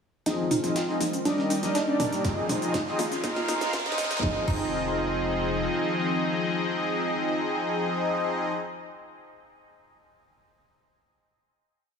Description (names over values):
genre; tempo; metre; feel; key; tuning
progressive house; 121 BPM; 4/4; straight; F dorian; A4 = 440 Hz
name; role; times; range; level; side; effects
warm analog pad; sustained chords; 0.3-8.3 s; Eb3 to G4; -33 LUFS; right 1 dB; chorus, sidechain pumping
wide unison pluck; arpeggios; 0.3-4.6 s; D4 to F4; -31 LUFS; right 1 dB; sidechain pumping, dub echo
soft supersaw; stabs; 0.3-8.5 s; F3 to F5; -27 LUFS; left 1 dB; phaser, cassette tape, sidechain pumping, low-pass filter, dub echo
round analog bass; bass; 0.3-5.7 s; Eb1 to F1; -38 LUFS; equal; sidechain pumping, high-pass filter
breakbeat sampler-style drum kit; drums; 0.3-4.1 s; ride cymbal, snare drum; -40 LUFS; right 2 dB; high-pass filter on cymbals, small room ambience, high-pass filter on snare
pop drum kit; drums; 0.3-4.6 s; crash cymbal, hi-hat, shaker, snare drum; -32 LUFS; equal; small room ambience
riser; sound effects; 1.6-4.2 s; none; -37 LUFS; right 3 dB; none
electronic toms and congas; percussion; 0.5-4.2 s; none; -34 LUFS; left 2 dB; sidechain pumping on toms, small room ambience, sidechain pumping on perc
electronic kick drum; drums; 2.2-4.6 s; none; -31 LUFS; equal; small room ambience
room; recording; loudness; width
moderate lush hall reverb, RT60 2.1 s; high-pass filter, small room ambience; -24 LUFS; side -6 dB against mid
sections
0.3-4.2 build; 4.2-8.2 final chord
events
build-up 0.3-4.2; drum fill 0.3-4.2; filter sweep on synth pluck 0.3-4.2; filter sweep on supersaw synth 0.3-4.2; filter sweep 0.3-4.2; riser 1.6-4.2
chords
0.3 Fm7; 1.3 Ebmaj7; 2.2 Fm7; 3.2 Bb7sus4; 4.2 Fm7